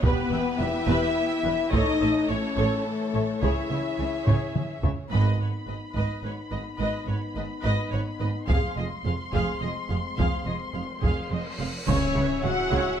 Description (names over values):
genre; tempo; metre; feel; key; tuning
cinematic, epic orchestral film score; 106 BPM; 3/4; straight; G# phrygian; A4 = 440 Hz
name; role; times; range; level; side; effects
dark symphonic violin section; melody; 0.0-13.0 s; B4 to C6; -37 LUFS; left 3 dB; none
rich symphonic violin section; second line; 0.0-13.0 s; A4 to F#5; -32 LUFS; left 2 dB; none
warm symphonic viola section; accompaniment; 0.0-13.0 s; G4 to E5; -34 LUFS; right 2 dB; none
mellow French horn section; sustained chords; 0.0-13.0 s; Ab3 to F#4; -30 LUFS; left 5 dB; none
warm symphonic string section; sustained chords; 0.0-5.1, 11.9-13.0 s; E3 to C#5; -34 LUFS; left 1 dB; none
rich studio double bass section; bass; 0.0-12.8 s; E1 to C#2; -30 LUFS; right 3 dB; none
warm symphonic cello section; bass; 0.0-12.8 s; E2 to C#3; -30 LUFS; right 2 dB; none
taiko ensemble; drums; 0.0-12.7 s; none; -26 LUFS; right 1 dB; none
cymbal swell and impact; sound effects; 11.2-13.0 s; none; -35 LUFS; equal; none
room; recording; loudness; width
light reverb; close, detailed microphones; -24 LUFS; side -9 dB against mid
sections
0.0-5.1 A section; 5.1-11.9 B section; 11.9-13.0 C section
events
drum fill 4.3-5.1; band accent 5.1-5.7; cymbal swell 11.2-11.9; impact 11.9-13.0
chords
0.0 Em; 1.7 A; 3.4 C#m; 5.1 G#m; 8.5 Fm; 11.9 C#m